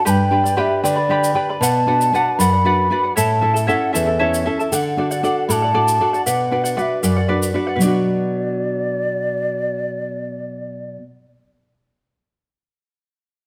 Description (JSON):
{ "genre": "andean folk, Andean ensemble", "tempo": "78 BPM (dotted quarters)", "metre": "6/8", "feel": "straight", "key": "B minor", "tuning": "A4 = 440 Hz", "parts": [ { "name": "mellow hollow large quena", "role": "melody", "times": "0.0-11.0 s", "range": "D5 to B5", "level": "-22 LUFS", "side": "equal", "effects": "none" }, { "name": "charango", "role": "accompaniment", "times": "0.0-11.4 s", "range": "E4 to B5", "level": "-24 LUFS", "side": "equal", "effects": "none" }, { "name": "nylon-string guitar", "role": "accompaniment", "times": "0.1-11.1 s", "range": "E2 to B4", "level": "-23 LUFS", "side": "equal", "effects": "none" }, { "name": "tube shaker", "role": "percussion", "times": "0.1-8.0 s", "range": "none", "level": "-30 LUFS", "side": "equal", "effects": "none" } ], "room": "moderate recital hall reverb, RT60 1.2 s", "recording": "close, detailed microphones", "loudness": "-18 LUFS", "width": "mono", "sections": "0.0-7.8 A section; 7.8-10.9 B section", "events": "none", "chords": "0.1 G; 1.6 Bm; 3.2 A; 4.7 D; 6.3 Bm" }